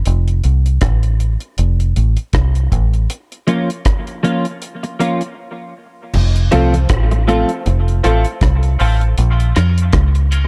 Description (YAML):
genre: dub reggae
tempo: 79 BPM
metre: 4/4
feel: swing 57% on 16ths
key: unclear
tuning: A4 = 440 Hz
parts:
  - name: deep dub fingered electric bass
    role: bass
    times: 0.0-10.5 s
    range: F1 to F2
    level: -16 LUFS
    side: equal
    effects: none
  - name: deep reggae drum kit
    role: drums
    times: 0.1-10.5 s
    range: crash cymbal, hi-hat, kick drum, rim click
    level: -21 LUFS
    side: equal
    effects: none
  - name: clean electric guitar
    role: accompaniment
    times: 3.5-10.5 s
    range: F3 to F4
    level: -23 LUFS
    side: equal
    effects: analog chorus, high-pass filter, low-pass filter, dub echo
  - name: congas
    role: percussion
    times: 6.1-9.9 s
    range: none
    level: -30 LUFS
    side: equal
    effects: none
  - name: clear upright piano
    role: stabs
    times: 6.5-10.5 s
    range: C4 to Bb4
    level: -24 LUFS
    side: equal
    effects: high-pass filter, dub echo
room: small room reverb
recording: dark, warm production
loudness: -15 LUFS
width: mono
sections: 0.0-6.1 A section; 6.1-10.5 B section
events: break 0.0-3.1, 3.1-6.1; filter sweep 6.1-10.5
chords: 0.1 F; 3.1 Bbm; 6.1 F; 9.2 Bbm